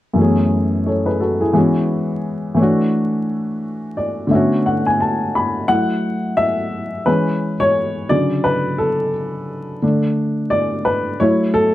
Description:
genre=hip hop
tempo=87 BPM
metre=4/4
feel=swing 58% on 16ths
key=F# minor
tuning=A4 = 440 Hz
part: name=dark upright piano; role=solo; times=0.1-11.7 s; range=F#2 to B5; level=-16 LUFS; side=left 1 dB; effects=cassette tape, low-pass filter
room=moderate studio reverb, RT60 0.7 s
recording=dark, warm production, vinyl crackle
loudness=-16 LUFS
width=side -14 dB against mid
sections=0.2-5.7 A section; 5.7-11.7 B section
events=upright piano fill 3.6-5.7; upright piano solo 5.7-11.7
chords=0.2 F#m11; 1.6 E69; 2.6 Dmaj7; 4.3 Bm9/D; 5.7 F#m7; 7.1 E6; 8.1 Dmaj7; 9.8 D5; 11.2 F#m7

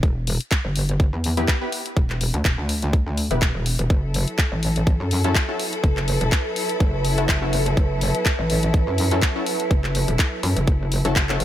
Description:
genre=bass house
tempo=124 BPM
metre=4/4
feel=swing 55% on 16ths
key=unclear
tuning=A4 = 435 Hz
part: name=metallic wobble bass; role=bass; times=0.0-11.4 s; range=E1 to F#2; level=-22 LUFS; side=equal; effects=distortion, chorus, overdrive, sidechain pumping
part: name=electronic kick drum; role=drums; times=0.0-11.3 s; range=none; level=-20 LUFS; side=equal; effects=none
part: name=garage drum kit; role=drums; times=0.0-11.4 s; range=handclaps, hi-hat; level=-26 LUFS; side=left 1 dB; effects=none
part: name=orchestra-hit-like synth stab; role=stabs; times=1.4-11.4 s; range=B3 to B4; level=-28 LUFS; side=left 2 dB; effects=built-in reverb, sidechain pumping, dub echo
part: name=bright studio string section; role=sustained chords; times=3.9-11.4 s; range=F#3 to A4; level=-29 LUFS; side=left 2 dB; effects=sidechain pumping
part: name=deep dark ambient pad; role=texture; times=5.6-11.4 s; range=B4 to A5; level=-29 LUFS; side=right 3 dB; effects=chorus, built-in reverb, sidechain pumping
room=little or no reverb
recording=none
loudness=-19 LUFS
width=side -12 dB against mid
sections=0.0-11.4 A section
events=fade-in on ambient pad 0.0-11.4; drum fill 11.3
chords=0.0 Em; 3.9 F#m7

